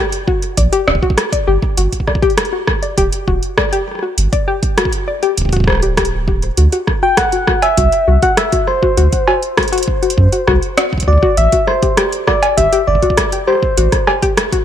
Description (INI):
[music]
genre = IDM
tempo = 100 BPM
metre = 4/4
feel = straight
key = unclear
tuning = A4 = 440 Hz
[part]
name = warbly dusty pluck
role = arpeggios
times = 0.0-14.6 s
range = F#4 to D5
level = -18 LUFS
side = left 4 dB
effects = chorus, ping-pong delay
[part]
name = booming analog drum machine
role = drums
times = 0.1-14.6 s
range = cowbell, hi-hat, rim click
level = -17 LUFS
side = right 1 dB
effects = overdrive
[part]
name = electronic kick drum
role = drums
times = 0.3-14.6 s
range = none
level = -18 LUFS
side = right 1 dB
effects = none
[part]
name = warm sub bass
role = bass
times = 0.6-13.9 s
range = D1 to F#2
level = -14 LUFS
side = right 1 dB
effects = none
[part]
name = soft struck synth lead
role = melody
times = 7.0-14.6 s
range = C5 to G5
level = -16 LUFS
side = left 1 dB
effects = chorus, digital delay
[sound]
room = light reverb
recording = none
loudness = -12 LUFS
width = side -10 dB against mid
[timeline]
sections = 0.0-14.6 A section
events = none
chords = 0.0 G5; 6.6 D7 (rootless); 11.4 Am7 (rootless)